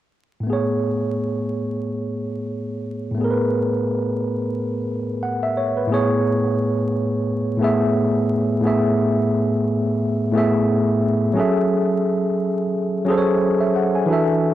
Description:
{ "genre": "hip hop", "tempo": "88 BPM", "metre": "4/4", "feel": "swing 59% on 16ths", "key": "A major", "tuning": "A4 = 439 Hz", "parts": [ { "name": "tine electric piano", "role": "accompaniment", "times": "0.4-14.5 s", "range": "A2 to G#5", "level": "-18 LUFS", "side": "equal", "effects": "medium stereo tremolo, low-pass filter" } ], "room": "light reverb", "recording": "dry, gritty hardware recording, transformer saturation, vinyl crackle", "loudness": "-18 LUFS", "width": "side -13 dB against mid", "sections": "0.4-5.9 A section; 5.9-14.5 B section", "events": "none", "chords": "0.4 Amaj9; 11.4 F#m9", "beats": "| 0.45 1.13 1.81 2.49 | 3.17 3.86 4.54 5.22 | 5.90 6.58 7.26 7.95 | 8.63 9.31 9.99 10.68 | 11.36 12.04 12.72 13.40 | 14.08" }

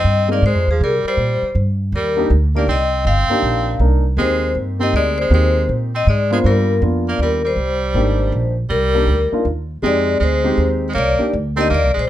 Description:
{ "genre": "jazz, small-group swing and bop", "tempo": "160 BPM", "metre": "3/4", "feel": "swing 65% on 8ths", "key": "C minor", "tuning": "A4 = 438 Hz", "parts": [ { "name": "vibraphone with medium hard mallets", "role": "melody", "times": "0.0-12.1 s", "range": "Ab4 to F5", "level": "-20 LUFS", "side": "left 3 dB", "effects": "none" }, { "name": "edgy tenor saxophone", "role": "second line", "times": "0.0-12.1 s", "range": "F3 to C4", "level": "-22 LUFS", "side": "right 4 dB", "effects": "none" }, { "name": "upright bass", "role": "bass", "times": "0.0-12.1 s", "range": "G1 to C3", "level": "-18 LUFS", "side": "right 1 dB", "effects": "none" }, { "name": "warm baby grand piano", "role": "accompaniment", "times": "0.3-11.7 s", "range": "Ab3 to Bb4", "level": "-21 LUFS", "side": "equal", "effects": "none" } ], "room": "light reverb", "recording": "close, detailed microphones", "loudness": "-15 LUFS", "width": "side -12 dB against mid", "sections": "0.0-8.7 A section; 8.7-12.1 A section", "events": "none", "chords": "0.0 Fm7; 0.8 Cm7; 4.2 Abmaj7; 6.4 G7#9; 7.6 Cm7; 9.8 Fm7; 11.0 Cm7", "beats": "0.05 0.43 | 0.80 1.18 1.55 | 1.93 2.31 2.68 | 3.06 3.44 3.81 | 4.19 4.57 4.94 | 5.32 5.69 6.07 | 6.45 6.82 7.20 | 7.57 7.95 8.32 | 8.70 9.08 9.45 | 9.83 10.20 10.58 | 10.95 11.33 11.70 | 12.08" }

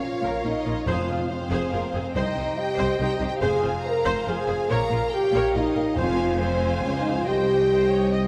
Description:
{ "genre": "cinematic", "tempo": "141 BPM", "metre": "3/4", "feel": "straight", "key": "F minor", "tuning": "A4 = 440 Hz", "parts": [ { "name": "warm symphonic violin section", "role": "melody", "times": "0.0-8.3 s", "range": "Bb4 to Bb5", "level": "-38 LUFS", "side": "equal", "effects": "none" }, { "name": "rich symphonic violin section", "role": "second line", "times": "0.0-8.3 s", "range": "C5 to Ab5", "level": "-35 LUFS", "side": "equal", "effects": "none" }, { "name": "warm French horn section", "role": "sustained chords", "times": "0.0-8.3 s", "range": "Bb3 to Bb4", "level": "-27 LUFS", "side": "equal", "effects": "none" }, { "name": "concert harp", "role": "arpeggios", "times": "0.0-8.3 s", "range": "F2 to C6", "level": "-36 LUFS", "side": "equal", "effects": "none" }, { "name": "rich symphonic viola section", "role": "accompaniment", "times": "0.2-8.2 s", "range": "Db4 to Eb5", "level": "-34 LUFS", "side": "equal", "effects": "none" }, { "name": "rich symphonic cello section", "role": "bass", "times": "0.2-8.3 s", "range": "C2 to Bb2", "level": "-33 LUFS", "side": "equal", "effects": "none" }, { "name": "rich symphonic double bass section", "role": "bass", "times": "0.2-8.3 s", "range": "F1 to Db2", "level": "-34 LUFS", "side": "equal", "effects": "none" }, { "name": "timpani", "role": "percussion", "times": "0.9-1.5, 6.0-6.6 s", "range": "F2", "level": "-36 LUFS", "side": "equal", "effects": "none" } ], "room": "wet scoring stage reverb, RT60 1.8 s", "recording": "none", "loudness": "-24 LUFS", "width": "mono", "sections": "0.0-8.3 A section", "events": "none", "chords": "0.0 Bbm; 0.9 Fm; 2.1 Cm; 3.4 Fm; 4.7 Bbm; 6.0 Fm; 7.3 Cm", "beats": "0.02 0.45 | 0.87 1.30 1.72 | 2.15 2.57 2.99 | 3.42 3.84 4.27 | 4.69 5.12 5.54 | 5.97 6.40 6.83 | 7.27 7.71 8.14" }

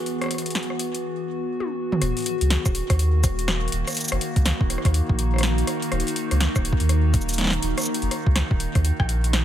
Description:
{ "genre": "IDM", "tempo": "123 BPM", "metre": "4/4", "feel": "swing 62% on 16ths", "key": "Eb phrygian", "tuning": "A4 = 440 Hz", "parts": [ { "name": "warbly tape-like pad", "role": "sustained chords", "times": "0.0-9.4 s", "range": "Eb3 to Ab4", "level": "-27 LUFS", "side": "equal", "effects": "chorus, built-in reverb, phaser" }, { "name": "electro analog drum machine", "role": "drums", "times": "0.1-9.4 s", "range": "hi-hat, rim click, shaker, snare drum, toms", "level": "-26 LUFS", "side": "equal", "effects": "none" }, { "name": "warm sub bass", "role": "bass", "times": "2.0-9.4 s", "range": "Eb1 to Eb2", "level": "-22 LUFS", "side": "equal", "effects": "none" }, { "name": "electronic kick drum", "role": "drums", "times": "2.7-9.1 s", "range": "none", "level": "-21 LUFS", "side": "equal", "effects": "none" } ], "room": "little or no reverb", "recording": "none", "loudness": "-20 LUFS", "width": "side -11 dB against mid", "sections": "0.0-2.0 A section; 2.0-9.4 B section", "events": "filter sweep on drum 0.0-2.0; filter sweep on ambient pad 0.0-2.0; drum fill 1.6-2.0", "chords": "0.0 E; 2.0 Ebm", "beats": "| 0.06 0.55 1.04 1.53 | 2.02 2.50 2.99 3.48 | 3.97 4.46 4.94 5.43 | 5.92 6.41 6.89 7.38 | 7.87 8.36 8.85 9.33" }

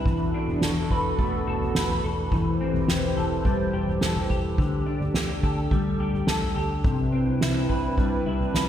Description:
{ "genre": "dream pop", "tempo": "106 BPM", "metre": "4/4", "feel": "straight", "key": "unclear", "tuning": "A4 = 440 Hz", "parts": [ { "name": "hollow soft pad", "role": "sustained chords", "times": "0.0-8.7 s", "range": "C3 to C5", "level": "-30 LUFS", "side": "right 2 dB", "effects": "chorus" }, { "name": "semi-hollow electric guitar", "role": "arpeggios", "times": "0.0-8.7 s", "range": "C3 to B4", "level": "-26 LUFS", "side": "left 2 dB", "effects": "ensemble chorus, digital delay" }, { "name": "vintage muted fingered electric bass", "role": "bass", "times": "0.0-8.7 s", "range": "E1 to D2", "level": "-32 LUFS", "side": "equal", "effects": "none" }, { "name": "soft-mallet drum kit", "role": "drums", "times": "0.1-8.7 s", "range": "kick drum, snare drum, toms", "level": "-27 LUFS", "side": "equal", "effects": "gated reverb" } ], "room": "moderate lush hall reverb, RT60 2.5 s", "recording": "bright 1980s-style digital production", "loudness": "-22 LUFS", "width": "side -10 dB against mid", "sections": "0.0-8.7 A section", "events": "none", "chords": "0.1 E7sus4; 2.3 Am7/E; 4.6 Dsus4; 6.8 Cmaj7", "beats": "| 0.06 0.62 1.19 1.75 | 2.32 2.88 3.45 4.02 | 4.58 5.15 5.71 6.28 | 6.85 7.41 7.98 8.55" }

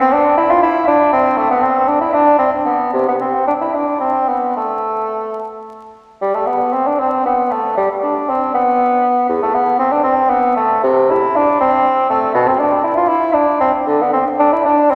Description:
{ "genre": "classical, baroque-style fantasia for unaccompanied bassoon", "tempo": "71-81 BPM (dotted quarters)", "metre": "6/8", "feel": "rubato", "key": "A minor, C major from 6.2 s", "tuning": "A4 = 441 Hz", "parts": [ { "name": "mellow bassoon", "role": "solo", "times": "0.0-14.9 s", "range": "E2 to F4", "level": "-15 LUFS", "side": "equal", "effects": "none" } ], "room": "wet concert hall reverb, RT60 2.2 s", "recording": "vinyl crackle", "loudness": "-15 LUFS", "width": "mono", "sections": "0.0-6.2 A section; 6.2-14.9 A section", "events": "none", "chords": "none", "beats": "0.62 | 1.37 2.13 | 2.93 3.73 | 4.55 5.38 | 6.21 7.00 | 7.77 8.54 | 9.30 10.04 | 10.84 11.61 | 12.35 13.09 | 13.88 14.65" }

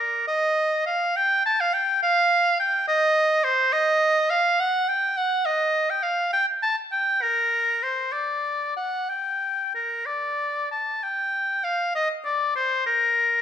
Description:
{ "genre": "classical, baroque-style fantasia for unaccompanied oboe", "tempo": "61-71 BPM (dotted quarters)", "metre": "6/8", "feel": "rubato", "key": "G minor from 3.7 s", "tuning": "A4 = 440 Hz", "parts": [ { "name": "bright oboe", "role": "solo", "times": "0.0-13.4 s", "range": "Bb4 to A5", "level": "-20 LUFS", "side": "equal", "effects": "none" } ], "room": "moderate recital hall reverb, RT60 1.4 s", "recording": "minimal, uncompressed stereo recording", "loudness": "-20 LUFS", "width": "side -9 dB against mid", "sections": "0.0-11.0 A section; 11.0-13.4 B section", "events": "none", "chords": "none", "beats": "| 0.27 1.15 | 2.02 2.88 | 3.73 4.59 | 5.46 6.33 | 7.22 8.13 | 9.09 10.07 | 11.04 11.95 | 12.86" }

